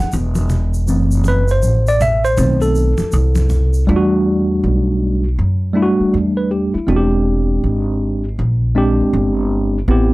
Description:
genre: hip hop, jazz-hop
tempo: 80 BPM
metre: 4/4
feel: swing 63% on 16ths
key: E minor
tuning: A4 = 441 Hz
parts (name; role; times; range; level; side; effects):
- mellow tine electric piano; accompaniment; 0.0-10.1 s; D#3 to F#5; -16 LUFS; equal; medium stereo tremolo
- upright bass; bass; 0.0-10.1 s; E1 to F#2; -16 LUFS; equal; none
- tube shaker and congas; percussion; 0.1-3.9 s; none; -23 LUFS; equal; none
room: little or no reverb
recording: dry, gritty hardware recording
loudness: -13 LUFS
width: side -20 dB against mid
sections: 0.0-3.9 A section; 3.9-10.1 B section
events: tine electric piano solo 0.0-3.9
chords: 0.0 N.C.; 0.9 F#m7b5; 2.4 B7b9; 3.9 Em11; 6.9 E7alt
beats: 0.13 | 0.88 1.63 2.38 3.13 | 3.88 4.63 5.38 6.13 | 6.88 7.63 8.38 9.13 | 9.88

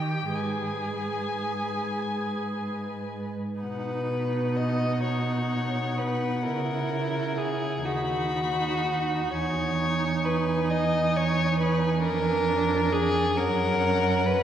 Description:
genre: classical, slow romantic movement for string quartet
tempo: 34-47 BPM (dotted quarters)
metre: 6/8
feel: rubato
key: G# minor, B major from 3.6 s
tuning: A4 = 440 Hz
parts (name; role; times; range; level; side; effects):
- muted violin; melody; 0.0-14.4 s; F#5 to B5; -35 LUFS; left 4 dB; none
- muted violin; second line; 0.0-14.4 s; F#4 to D#5; -28 LUFS; left 1 dB; none
- muted viola; accompaniment; 0.0-14.4 s; C#4 to G#4; -33 LUFS; right 2 dB; none
- muted cello; bass; 0.0-14.4 s; D#2 to D#3; -28 LUFS; right 3 dB; none
room: wet church reverb, RT60 3.1 s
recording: none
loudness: -24 LUFS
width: side -10 dB against mid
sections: 0.0-3.6 A section; 3.6-14.4 B section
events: none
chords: 0.3 G#m; 3.6 B; 6.5 F#7/C#; 7.9 B/D#; 9.3 Emaj7; 12.0 A#7/E#; 13.4 F#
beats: | 0.34 2.01 | 3.62 5.05 | 6.47 7.86 | 9.34 10.72 | 12.03 13.38

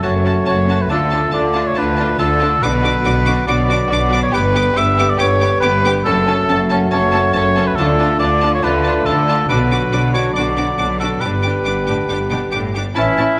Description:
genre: cinematic, heroic adventure film score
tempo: 140 BPM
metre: 4/4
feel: straight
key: unclear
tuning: A4 = 440 Hz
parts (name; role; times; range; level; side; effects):
- rich symphonic violin section; melody; 0.0-13.3 s; A5 to D6; -27 LUFS; equal; none
- rich symphonic violin section; second line; 0.0-13.3 s; E4 to A4; -29 LUFS; equal; none
- warm oboe; second line; 0.0-12.5 s; A4 to E5; -21 LUFS; equal; none
- rich symphonic viola section; accompaniment; 0.0-13.3 s; B3 to D4; -29 LUFS; equal; none
- dark trombone section; sustained chords; 0.0-13.1 s; D3 to C#4; -26 LUFS; equal; none
- warm French horn section; sustained chords; 0.0-13.4 s; E3 to B4; -27 LUFS; equal; none
- clear symphonic cello section; bass; 0.0-12.8 s; F#2 to D3; -24 LUFS; equal; none
- rich symphonic double bass section; bass; 0.0-13.3 s; F#1 to D2; -23 LUFS; equal; none
- warm clarinet; second line; 12.9-13.4 s; C#4; -23 LUFS; equal; none
- concert flute; second line; 13.0-13.4 s; E5; -23 LUFS; equal; none
- clear trumpet section; stabs; 13.0-13.4 s; E4; -20 LUFS; equal; none
room: moderate scoring stage reverb, RT60 1.8 s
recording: none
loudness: -16 LUFS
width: mono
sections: 0.0-13.0 A section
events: none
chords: 0.0 F#m; 0.9 Dm; 2.6 Bm; 4.3 G; 6.1 F#m; 7.8 Dm; 9.5 Bm; 11.2 G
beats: 0.04 0.47 | 0.91 1.34 1.77 2.20 | 2.63 3.06 3.48 3.91 | 4.34 4.77 5.20 5.63 | 6.06 6.49 6.92 7.35 | 7.78 8.21 8.63 9.06 | 9.49 9.92 10.35 10.79 | 11.22 11.65 12.09 12.53 | 12.96 13.40

